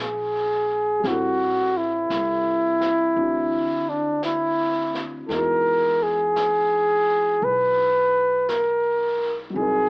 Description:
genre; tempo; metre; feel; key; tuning
jazz ballad; 56 BPM; 4/4; swing 67% on 8ths; unclear; A4 = 444 Hz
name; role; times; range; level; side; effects
breathy flugelhorn; melody; 0.0-9.9 s; D4 to B4; -20 LUFS; equal; cassette tape, plate reverb
dark upright piano; accompaniment; 0.0-9.9 s; E3 to G5; -31 LUFS; left 1 dB; cassette tape, plate reverb
upright bass; bass; 0.0-9.9 s; A1 to E2; -39 LUFS; equal; none
vintage brush drum kit; drums; 1.0-9.9 s; brushed snare drum, hi-hat, snare drum; -36 LUFS; equal; cassette tape
room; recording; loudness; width
moderate small room reverb, RT60 0.5 s; home recording on cassette, AM radio sound; -19 LUFS; side -30 dB against mid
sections
0.0-9.9 A section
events
none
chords
0.0 Abmaj9; 1.0 Am7; 3.2 D9; 5.3 Emaj9

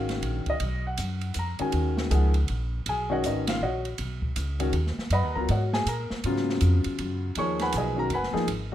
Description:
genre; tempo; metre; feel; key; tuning
modal jazz; 160 BPM; 3/4; swing 64% on 8ths; G# dorian; A4 = 442 Hz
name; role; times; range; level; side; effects
warm grand piano; accompaniment; 0.0-8.7 s; C#3 to C#6; -28 LUFS; left 1 dB; none
upright bass; bass; 0.0-8.7 s; F#1 to A#2; -27 LUFS; equal; none
open jazz drum kit; drums; 0.1-8.6 s; hi-hat, kick drum, ride cymbal, snare drum; -34 LUFS; right 1 dB; none
room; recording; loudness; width
moderate studio reverb, RT60 0.8 s; none; -24 LUFS; side -12 dB against mid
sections
0.0-8.7 A section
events
none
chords
0.0 G#m7; 1.7 Badd9; 6.2 G#m7

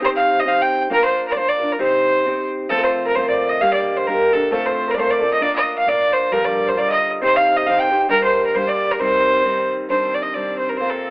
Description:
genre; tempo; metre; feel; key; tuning
celtic folk, Celtic polka; 134 BPM; 2/4; swing 57% on 8ths; C dorian; A4 = 440 Hz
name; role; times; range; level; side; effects
rich fiddle; melody; 0.0-11.1 s; A4 to G5; -17 LUFS; equal; none
fingerpicked steel-string acoustic guitar; accompaniment; 0.0-11.1 s; G2 to C5; -23 LUFS; equal; none
concert harp; second line; 2.7-11.0 s; A4 to G5; -22 LUFS; equal; tape echo
clear studio string section; drone; 9.9-11.1 s; C3 to C4; -33 LUFS; equal; none
room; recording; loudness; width
moderate studio reverb, RT60 0.6 s; telephone sound; -15 LUFS; side -25 dB against mid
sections
0.0-2.7 A section; 2.7-9.9 A section; 9.9-11.1 B section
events
none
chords
0.0 Cm; 0.9 Bb; 1.8 Cm; 2.7 F; 3.6 Gm; 4.5 F/A; 5.4 Bb; 6.3 Gm7; 7.2 Cm; 8.1 Gm; 9.0 Cm; 9.9 Cmadd9

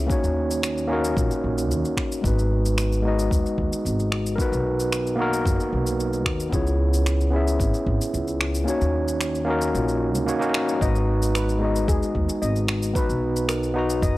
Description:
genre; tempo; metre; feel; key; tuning
sunset chillout; 112 BPM; 4/4; straight; G# minor; A4 = 439 Hz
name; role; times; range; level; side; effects
overdriven tine electric piano; accompaniment; 0.0-14.2 s; G#3 to A#5; -24 LUFS; equal; auto-pan, analog delay
upright bass; bass; 0.0-14.1 s; F#1 to D#2; -25 LUFS; equal; none
electronic kick drum; drums; 0.1-14.1 s; none; -25 LUFS; equal; overdrive, small room ambience
electronic shaker and finger snaps; drums; 0.1-14.1 s; none; -30 LUFS; equal; overdrive, small room ambience
steel pan; arpeggios; 10.8-14.2 s; G#4 to D#5; -33 LUFS; left 1 dB; analog delay
room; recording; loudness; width
light reverb, small room ambience; dry, gritty hardware recording; -20 LUFS; side -18 dB against mid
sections
0.0-14.2 A section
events
kick drops out 8.7-10.8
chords
0.1 D#m7; 2.2 G#m7; 4.4 Bmaj7; 6.5 C#m7; 8.7 D#m7; 10.8 G#m7; 13.0 Bmaj7

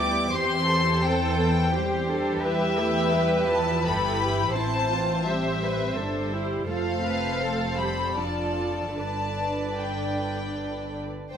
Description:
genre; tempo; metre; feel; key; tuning
classical, slow romantic movement for string orchestra; 74-86 BPM; 3/4; rubato; unclear; A4 = 442 Hz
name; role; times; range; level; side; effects
warm studio violin section; melody; 0.0-11.4 s; E5 to D6; -28 LUFS; left 4 dB; none
rich studio violin section; second line; 0.0-11.4 s; G4 to D5; -30 LUFS; left 1 dB; none
warm studio viola section; accompaniment; 0.0-11.1 s; D3 to F4; -30 LUFS; right 2 dB; none
dark studio double bass section; bass; 0.0-11.4 s; F1 to E2; -30 LUFS; right 1 dB; none
warm studio cello section; bass; 0.0-11.4 s; C2 to B4; -32 LUFS; right 1 dB; none
room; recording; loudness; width
moderate scoring stage reverb, RT60 1.6 s; none; -23 LUFS; side -8 dB against mid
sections
0.0-11.3 A section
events
none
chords
0.3 C/E; 2.4 Em; 4.5 Am7; 6.7 F; 8.2 Dm/F; 8.9 G

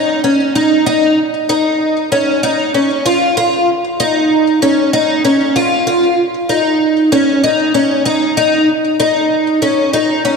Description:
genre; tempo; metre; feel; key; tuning
dream pop; 96 BPM; 4/4; straight; unclear; A4 = 441 Hz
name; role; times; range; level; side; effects
picked twelve-string acoustic guitar; solo; 0.0-10.4 s; Db4 to F4; -11 LUFS; equal; analog chorus, ping-pong delay
room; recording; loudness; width
wet concert hall reverb, RT60 2.2 s; dark, warm production; -11 LUFS; side -5 dB against mid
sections
0.0-1.2 A section; 1.2-10.4 B section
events
none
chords
none

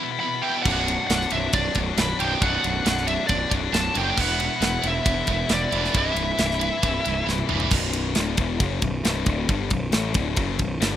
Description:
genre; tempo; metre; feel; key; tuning
heavy metal; 136 BPM; 4/4; straight; B phrygian; A4 = 440 Hz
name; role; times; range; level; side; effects
distorted electric guitar; riff; 0.0-11.0 s; B1 to E4; -28 LUFS; left 11 dB; overdrive
heavy high-gain guitar; riff; 0.0-7.7 s; B1 to E3; -29 LUFS; right 13 dB; distortion
high-gain lead guitar; melody; 0.2-7.2 s; D5 to B5; -26 LUFS; right 1 dB; distortion
fuzz picked electric bass; bass; 0.7-11.0 s; B0 to A1; -27 LUFS; right 1 dB; overdrive
tight metal drum kit; drums; 0.7-10.9 s; crash cymbal, kick drum, ride cymbal, snare drum, toms; -25 LUFS; right 1 dB; none
room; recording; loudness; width
little or no reverb; rough home demo mix; -20 LUFS; side -11 dB against mid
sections
0.0-7.7 A section; 7.7-11.0 B section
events
drum fill 7.3-7.7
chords
0.0 Em; 0.7 Bm; 4.2 E5; 5.9 C; 7.7 Bm

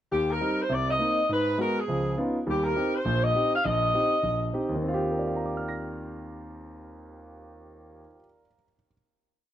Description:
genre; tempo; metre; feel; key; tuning
jazz; 204 BPM; 4/4; swing 62% on 8ths; Eb major; A4 = 440 Hz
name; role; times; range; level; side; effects
warm saxophone section; melody; 0.1-4.5 s; G4 to F5; -26 LUFS; left 1 dB; none
warm concert grand piano; accompaniment; 0.1-8.9 s; Bb1 to Bb6; -28 LUFS; right 1 dB; none
room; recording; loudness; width
little or no reverb; dry, close 1970s-style studio recording; -24 LUFS; side -11 dB against mid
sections
0.1-4.8 A section; 4.8-7.2 final chord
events
none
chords
0.1 Eb6; 0.7 Cm7; 1.3 Abm7; 1.9 Db9; 2.5 Eb6

